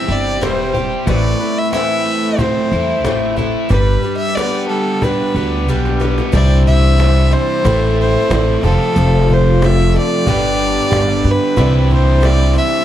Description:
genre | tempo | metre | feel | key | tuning
folk rock and heartland rock | 91 BPM | 4/4 | straight | unclear | A4 = 440 Hz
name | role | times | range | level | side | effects
rich fiddle | melody | 0.0-12.8 s | A4 to E5 | -19 LUFS | left 1 dB | none
picked twelve-string acoustic guitar | accompaniment | 0.0-12.8 s | A2 to C5 | -22 LUFS | left 6 dB | none
overdriven electric guitar | riff | 0.0-12.8 s | F2 to G4 | -19 LUFS | right 2 dB | none
upright bass | bass | 0.1-12.6 s | E1 to G2 | -15 LUFS | equal | none
cajon | drums | 0.1-12.4 s | none | -23 LUFS | equal | none
dark upright piano | accompaniment | 6.3-12.7 s | C4 to E5 | -26 LUFS | right 6 dB | none
tonewheel organ | sustained chords | 6.3-12.8 s | C4 to D6 | -29 LUFS | right 1 dB | none
room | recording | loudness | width
little or no reverb | none | -12 LUFS | side -11 dB against mid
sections
0.0-6.3 A section; 6.3-12.8 B section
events
drum fill 5.7-6.3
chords
0.0 C; 1.1 Amadd9; 3.7 G; 6.3 Cadd9; 7.7 Am; 8.6 F; 10.3 G; 11.6 Cadd9

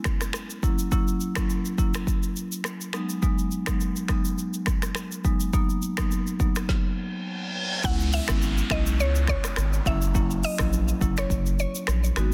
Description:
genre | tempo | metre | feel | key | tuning
afrobeats | 104 BPM | 4/4 | swing 55% on 16ths | unclear | A4 = 438 Hz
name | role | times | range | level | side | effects
afro-pop drum kit | drums | 0.0-12.3 s | finger snaps, hi-hat, kick drum, rim click, shaker, snare drum | -29 LUFS | equal | soft clipping on snare
marimba with medium mallets | accompaniment | 0.6-12.3 s | F#3 to F#4 | -32 LUFS | equal | none
reverse cymbal and downlifter | sound effects | 7.0-12.3 s | none | -37 LUFS | equal | none
mallet-like synth pluck | melody | 7.8-12.1 s | C#5 to F#5 | -34 LUFS | equal | chorus, delay
saturated sub bass | bass | 7.8-12.3 s | F#1 to C#2 | -27 LUFS | equal | none
room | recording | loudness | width
digital ambience | dense, heavily limited modern master | -26 LUFS | mono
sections
0.0-7.8 A section; 7.8-12.3 B section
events
reverse cymbal 7.0-7.8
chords
0.0 N.C.; 0.6 F#7; 2.9 G#m7; 5.5 Bmaj7; 7.8 C#m7; 9.9 F#7

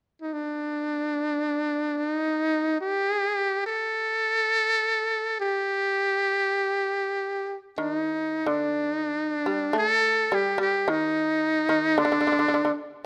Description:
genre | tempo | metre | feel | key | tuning
japanese traditional, Japanese chamber music | free time | none | none | unclear | A4 = 443 Hz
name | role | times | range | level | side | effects
trumpet with metal mute | melody | 0.2-12.8 s | D4 to A4 | -26 LUFS | equal | none
shamisen | second line | 7.8-12.7 s | D3 to A3 | -30 LUFS | equal | none
room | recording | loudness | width
light reverb | close, detailed microphones | -25 LUFS | mono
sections
0.0-9.8 A section; 9.8-13.1 B section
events
none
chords
none

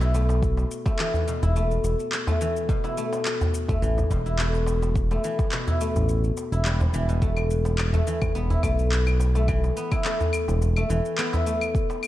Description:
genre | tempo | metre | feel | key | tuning
organic downtempo | 106 BPM | 4/4 | swing 54% on 16ths | unclear | A4 = 441 Hz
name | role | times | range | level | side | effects
guzheng | arpeggios | 0.0-12.1 s | B2 to E4 | -27 LUFS | left 2 dB | digital delay
smooth synth bass | bass | 0.0-11.0 s | E1 to B1 | -23 LUFS | equal | sidechain pumping
electronic shaker, handclaps and claves | drums | 0.0-12.1 s | none | -32 LUFS | left 1 dB | overdrive, small room ambience
darbuka | percussion | 0.0-12.0 s | none | -29 LUFS | equal | none
electronic kick drum | drums | 0.4-11.9 s | none | -26 LUFS | equal | overdrive, small room ambience
room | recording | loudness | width
light reverb, digital ambience | dark, warm production | -22 LUFS | side -14 dB against mid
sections
0.0-12.1 A section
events
none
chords
0.0 E5; 2.7 A5; 7.2 E5

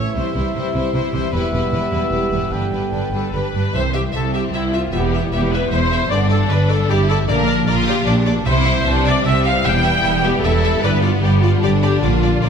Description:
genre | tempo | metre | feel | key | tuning
cinematic | 152 BPM | 3/4 | straight | C major from 3.7 s | A4 = 440 Hz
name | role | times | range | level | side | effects
clear symphonic violin section | melody | 0.0-12.5 s | B4 to E5 | -28 LUFS | left 5 dB | none
clear symphonic violin section | second line | 0.0-12.5 s | Bb3 to F4 | -26 LUFS | left 3 dB | none
rich studio viola section | accompaniment | 0.0-12.5 s | G3 to G5 | -21 LUFS | left 1 dB | none
dark trombone section | sustained chords | 0.0-12.5 s | D3 to C4 | -27 LUFS | right 1 dB | none
mellow French horn section | sustained chords | 0.0-3.5 s | B3 to G4 | -27 LUFS | equal | none
concert harp | arpeggios | 0.0-12.5 s | E2 to C#6 | -25 LUFS | left 9 dB | none
warm trumpet | stabs | 0.0-3.5 s | E5 to G5 | -27 LUFS | equal | none
rich symphonic cello section | bass | 0.0-12.5 s | C2 to C3 | -22 LUFS | right 3 dB | none
rich symphonic double bass section | bass | 0.0-12.5 s | E1 to C2 | -21 LUFS | right 2 dB | none
room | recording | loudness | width
moderate scoring stage reverb, RT60 1.7 s | none | -15 LUFS | side -6 dB against mid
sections
0.0-3.7 A section; 3.7-12.5 B section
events
none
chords
0.2 C; 1.3 Em; 2.5 G; 3.7 C; 4.9 Em; 6.1 G; 7.3 Bb; 8.5 C; 9.6 Em; 10.8 G

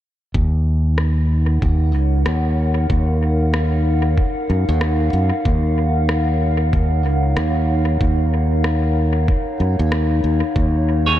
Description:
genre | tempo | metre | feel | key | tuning
ambient dub | 94 BPM | 4/4 | swing 60% on 16ths | Eb minor | A4 = 439 Hz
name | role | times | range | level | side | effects
warbly tape-like pad | sustained chords | 0.9-11.2 s | Eb4 to Gb5 | -23 LUFS | left 1 dB | chorus, built-in reverb, vintage 12-bit sampler grit
modern bright fingered electric bass | bass | 0.3-11.2 s | Db2 to Gb2 | -17 LUFS | equal | none
electronic kick drum | drums | 0.3-10.7 s | none | -19 LUFS | equal | overdrive
electronic rim click | drums | 1.0-10.1 s | none | -31 LUFS | left 1 dB | dub echo
semi-hollow electric guitar | stabs | 11.1-11.2 s | Eb4 to Db5 | -15 LUFS | right 4 dB | spring reverb
room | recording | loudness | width
light reverb | none | -16 LUFS | side -12 dB against mid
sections
0.3-11.2 A section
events
none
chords
0.3 Ebm7

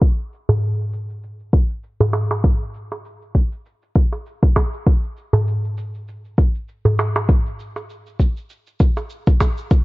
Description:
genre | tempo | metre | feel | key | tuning
downtempo | 99 BPM | 4/4 | swing 55% on 16ths | none | none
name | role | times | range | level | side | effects
electronic kick drum | drums | 0.0-9.8 s | none | -15 LUFS | equal | none
shaker | drums | 0.0-9.8 s | none | -50 LUFS | right 4 dB | low-pass filter on perc, low-pass filter on room
darbuka | percussion | 0.5-9.5 s | none | -20 LUFS | right 1 dB | none
room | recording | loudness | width
digital ambience | low-pass filter | -17 LUFS | side -21 dB against mid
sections
0.0-9.8 A section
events
filter sweep 0.0-9.8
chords
none

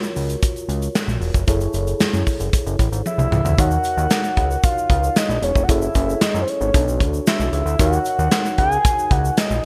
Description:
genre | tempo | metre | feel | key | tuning
early-eighties boogie funk | 114 BPM | 4/4 | straight | unclear | A4 = 442 Hz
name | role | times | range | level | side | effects
FM electric piano with tremolo | accompaniment | 0.0-9.7 s | D4 to Db5 | -29 LUFS | equal | none
modern studio drum kit | drums | 0.0-9.5 s | handclaps, hi-hat, kick drum, snare drum, toms | -22 LUFS | equal | gated reverb
tube shaker | percussion | 0.0-9.6 s | none | -39 LUFS | equal | none
fat analog bass | bass | 0.2-9.6 s | Fb1 to Gb2 | -24 LUFS | equal | none
soft octave-layered synth lead | melody | 3.1-9.7 s | C5 to Ab5 | -24 LUFS | equal | chorus
room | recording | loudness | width
light reverb, studio ambience | bright 1980s-style digital production | -19 LUFS | mono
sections
0.0-3.6 A section; 3.6-9.7 B section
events
drum fill 3.1-3.6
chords
0.0 Ebm9 (rootless); 1.5 Gbm9; 3.6 Ebm9; 5.7 Gbm9; 6.7 Bm9; 7.8 Ebm7

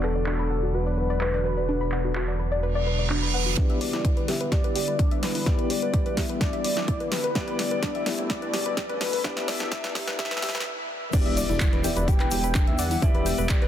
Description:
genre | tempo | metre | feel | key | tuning
progressive house | 127 BPM | 4/4 | straight | E minor | A4 = 440 Hz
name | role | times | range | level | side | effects
warm velvety synth lead | melody | 0.0-13.7 s | A4 to G5 | -31 LUFS | left 2 dB | chorus, sidechain pumping, ping-pong delay
evolving wavetable pad | sustained chords | 0.0-13.7 s | B2 to F#4 | -34 LUFS | left 1 dB | phaser, built-in reverb, vintage 12-bit sampler grit, sidechain pumping
soft round pluck | arpeggios | 0.0-13.7 s | D4 to E6 | -32 LUFS | equal | chorus, cassette tape, sidechain pumping, digital delay
felt-muted upright piano | stabs | 0.0-13.7 s | B3 to E5 | -34 LUFS | left 3 dB | sidechain pumping, low-pass filter, digital delay
dark detuned saw bass | bass | 0.0-13.7 s | E1 to E2 | -30 LUFS | equal | sidechain pumping, high-pass filter
house drum kit | drums | 0.0-13.7 s | crash cymbal, handclaps, hi-hat, snare drum | -32 LUFS | equal | soft clipping on snare, low-pass filter on snare, studio reverb, sidechain pumping on hats, low-pass filter on hats, sidechain pumping on cymbals, low-pass filter on cymbals
reverse cymbal, riser and impact | sound effects | 2.8-13.0 s | none | -36 LUFS | right 2 dB | none
electronic kick drum | drums | 3.6-13.6 s | none | -24 LUFS | equal | studio reverb
egg shaker | percussion | 11.1-13.6 s | none | -37 LUFS | left 3 dB | none
room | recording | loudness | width
light reverb | dense, heavily limited modern master, high-pass filter | -23 LUFS | side -10 dB against mid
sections
0.0-3.6 A section; 3.6-11.1 B section; 11.1-13.7 C section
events
filter sweep on synth pluck 0.0-3.6; filter sweep on ambient pad 0.0-3.6; reverse cymbal 2.8-3.6; build-up 3.6-11.1; drum fill 3.6-10.7; filter sweep on felt piano 3.6-11.1; filter sweep 3.6-11.1; break 10.7-11.1; drop 11.1-13.7; impact 11.1-13.0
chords
0.0 Bm/E; 3.6 Em7

